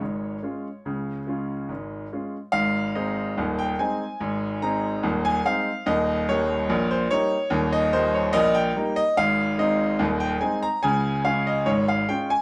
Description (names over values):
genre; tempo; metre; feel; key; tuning
ragtime piano; 72 BPM; 2/4; straight; Ab major; A4 = 438 Hz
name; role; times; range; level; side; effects
clear grand piano; solo; 0.0-12.4 s; Eb1 to Bb5; -24 LUFS; equal; none
room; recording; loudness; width
moderate studio reverb, RT60 0.7 s; none; -24 LUFS; mono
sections
0.0-2.5 A section; 2.5-12.4 B section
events
none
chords
0.0 Db; 2.5 Ab; 5.9 Eb; 9.2 Ab; 10.8 Db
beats
0.01 | 0.85 1.70 | 2.54 3.37 | 4.20 5.04 | 5.87 6.70 | 7.53 8.36 | 9.19 10.01 | 10.84 11.67